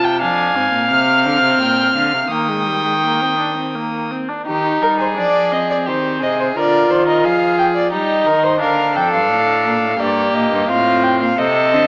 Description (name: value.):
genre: classical, baroque-style fugue for string quartet.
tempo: 86 BPM.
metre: 3/4.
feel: straight.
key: Eb major.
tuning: A4 = 440 Hz.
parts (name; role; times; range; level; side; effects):
warm violin; melody; 0.0-11.9 s; Bb4 to F6; -20 LUFS; equal; none.
warm violin; second line; 0.0-11.9 s; F4 to G5; -22 LUFS; equal; none.
warm viola; accompaniment; 0.0-11.9 s; G3 to F4; -22 LUFS; equal; none.
rich cello; bass; 0.0-11.9 s; F2 to G3; -26 LUFS; equal; none.
room: moderate recital hall reverb, RT60 1.5 s.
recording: AM radio sound.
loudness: -16 LUFS.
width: mono.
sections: 0.0-4.5 A section; 4.5-11.9 B section.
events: none.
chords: 0.2 Fm; 1.6 Bb; 2.3 Eb; 5.9 Cm/Eb; 6.6 Bb/D; 7.9 Eb/G; 8.6 Bb; 10.0 Gm; 10.7 F/A.